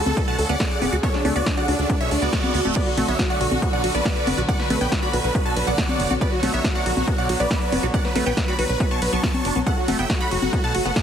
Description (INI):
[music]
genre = uplifting trance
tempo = 139 BPM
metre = 4/4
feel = straight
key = B minor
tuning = A4 = 436 Hz
[part]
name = big supersaw lead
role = melody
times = 0.0-11.0 s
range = D4 to C#6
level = -26 LUFS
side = right 1 dB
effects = phaser, sidechain pumping, tape echo
[part]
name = wide unison pluck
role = second line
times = 0.0-11.0 s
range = D4 to C#6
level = -29 LUFS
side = right 1 dB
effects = sidechain pumping, digital delay
[part]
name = rich chamber string section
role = sustained chords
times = 0.0-11.0 s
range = C#3 to F#4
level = -28 LUFS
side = right 1 dB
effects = sidechain pumping
[part]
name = tight sequencer bass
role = bass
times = 0.0-10.9 s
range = D1 to D2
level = -26 LUFS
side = equal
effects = sidechain pumping
[part]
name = big-room dance drum kit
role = drums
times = 0.1-11.0 s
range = congas, crash cymbal, hi-hat, ride cymbal, snare drum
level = -27 LUFS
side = left 2 dB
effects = none
[part]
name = liquid acid bass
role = arpeggios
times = 0.2-11.0 s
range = B2 to F#4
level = -29 LUFS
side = right 2 dB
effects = phaser, sidechain pumping, digital delay
[part]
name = electronic kick drum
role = drums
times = 0.2-11.0 s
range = none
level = -23 LUFS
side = equal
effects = none
[part]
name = reverse cymbal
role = sound effects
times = 2.1-2.8 s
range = none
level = -33 LUFS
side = right 7 dB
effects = none
[sound]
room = light reverb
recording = heavily compressed radio sound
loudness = -19 LUFS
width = side -8 dB against mid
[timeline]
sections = 0.0-11.0 A section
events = reverse cymbal 2.1-2.8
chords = 0.0 Dmaj7; 2.8 Bm; 9.7 F#m